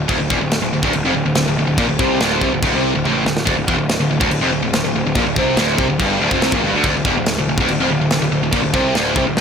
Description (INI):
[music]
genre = heavy metal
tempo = 142 BPM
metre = 4/4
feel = straight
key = D minor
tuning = A4 = 440 Hz
[part]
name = high-gain distorted guitar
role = riff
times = 0.0-9.4 s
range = D2 to D3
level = -17 LUFS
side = equal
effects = distortion
[part]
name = fuzz picked electric bass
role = bass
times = 0.0-9.4 s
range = D1 to D2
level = -22 LUFS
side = equal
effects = overdrive
[part]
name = tight metal drum kit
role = drums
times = 0.1-9.4 s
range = crash cymbal, kick drum, snare drum, toms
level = -20 LUFS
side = equal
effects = none
[sound]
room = small room reverb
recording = none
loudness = -14 LUFS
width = side -7 dB against mid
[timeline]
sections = 0.0-9.4 A section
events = drum fill 3.1-3.5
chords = none